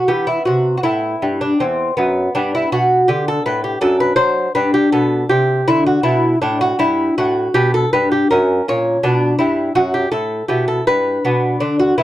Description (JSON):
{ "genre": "classical, baroque-style dance for lute", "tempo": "81 BPM", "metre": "3/4", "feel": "rubato", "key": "B minor from 6.8 s", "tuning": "A4 = 440 Hz", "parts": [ { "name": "lute", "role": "solo", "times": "0.0-12.0 s", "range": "E2 to C#5", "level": "-14 LUFS", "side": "equal", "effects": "none" } ], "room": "light reverb", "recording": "dry, close 1970s-style studio recording", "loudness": "-14 LUFS", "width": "side -14 dB against mid", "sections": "0.0-12.0 A section", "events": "none", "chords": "0.1 Em; 2.4 G; 3.8 D7/F#; 4.6 G; 6.8 Gmaj13; 8.3 F#; 9.0 B5; 10.5 Em/B; 11.2 Bm", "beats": "| 0.08 0.83 1.60 | 2.35 3.09 3.82 | 4.56 5.31 6.05 | 6.79 7.53 8.27 | 9.02 9.76 10.49 | 11.24 12.00" }